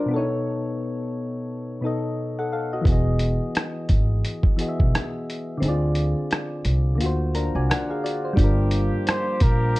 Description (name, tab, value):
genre	lo-fi hip hop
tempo	87 BPM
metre	4/4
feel	swing 60% on 16ths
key	unclear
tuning	A4 = 440 Hz
part	soft electric-piano-like synth keys	accompaniment	0.0-9.8 s	B2 to A#5	-26 LUFS	left 1 dB	chorus, cassette tape, low-pass filter
part	upright bass	bass	2.9-9.7 s	E1 to D2	-22 LUFS	equal	none
part	dusty soul sampler-style drum kit	drums	2.9-9.8 s	hi-hat, kick drum, rim click	-21 LUFS	equal	none
part	warm woodwind section	sustained chords	8.4-9.8 s	F3 to G4	-32 LUFS	right 1 dB	low-pass filter
part	breathy flugelhorn	melody	9.1-9.8 s	Bb4 to C5	-25 LUFS	equal	low-pass filter
room	light reverb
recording	cassette tape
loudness	-21 LUFS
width	side -19 dB against mid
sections	0.0-8.4 A section; 8.4-9.8 B section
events	kick muted 5.6-8.4; synth keys fill 7.0-8.4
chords	0.1 B7; 2.9 Emaj7; 5.6 Dm7b5; 7.0 D7alt; 8.4 Gm7